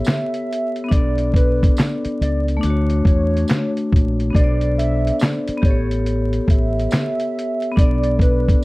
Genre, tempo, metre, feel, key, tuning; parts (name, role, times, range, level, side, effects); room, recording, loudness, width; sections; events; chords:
lo-fi hip hop; 70 BPM; 4/4; swing 63% on 16ths; B minor; A4 = 440 Hz
warbly nostalgic lead; melody; 0.0-8.6 s; B4 to E5; -25 LUFS; right 1 dB; chorus, low-pass filter
vibraphone with hard mallets; accompaniment; 0.0-8.6 s; A3 to D5; -22 LUFS; left 2 dB; low-pass filter
tambourine; percussion; 0.0-7.2 s; -39 LUFS; right 4 dB
dusty soul sampler-style drum kit; drums; 0.1-8.6 s; handclaps, hi-hat, kick drum, snare drum; -17 LUFS; equal; vintage 12-bit sampler grit
deep dub fingered electric bass; bass; 0.9-8.5 s; A1 to E2; -20 LUFS; equal
light reverb; dark, warm production, vinyl crackle; -16 LUFS; side -21 dB against mid
0.0-8.6 A section
0.0 A9; 0.9 Bm9; 2.6 Dmaj7; 4.3 Bm7; 5.6 A9; 7.8 Bm7